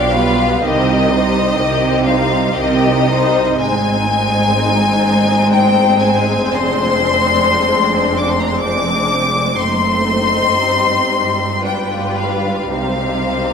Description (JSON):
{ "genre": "classical, slow romantic movement for string orchestra", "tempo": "52-64 BPM", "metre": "3/4", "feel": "rubato", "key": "C minor", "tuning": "A4 = 438 Hz", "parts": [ { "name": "clear studio violin section", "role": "melody", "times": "0.0-13.5 s", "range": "Eb5 to D6", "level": "-17 LUFS", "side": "left 4 dB", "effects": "none" }, { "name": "warm studio violin section", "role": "second line", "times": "0.0-13.5 s", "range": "D4 to Eb5", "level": "-19 LUFS", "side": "left 4 dB", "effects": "none" }, { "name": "rich studio viola section", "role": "accompaniment", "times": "0.0-13.5 s", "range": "Eb3 to Eb4", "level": "-20 LUFS", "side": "right 2 dB", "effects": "none" }, { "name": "rich studio cello section", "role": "bass", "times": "0.0-13.5 s", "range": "F2 to C3", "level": "-21 LUFS", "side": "right 3 dB", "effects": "none" }, { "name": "warm studio double bass section", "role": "bass", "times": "0.0-13.5 s", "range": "F1 to C2", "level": "-23 LUFS", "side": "right 4 dB", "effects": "none" } ], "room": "wet concert hall reverb, RT60 1.7 s", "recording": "minimal, uncompressed stereo recording", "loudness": "-12 LUFS", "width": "side -6 dB against mid", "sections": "0.0-13.5 A section", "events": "none", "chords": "0.0 G7/B; 0.6 Cm; 3.6 Ab; 6.5 Dm7b5/F; 9.6 F#dim7; 10.6 Cm/G; 11.6 G7; 12.7 Cm" }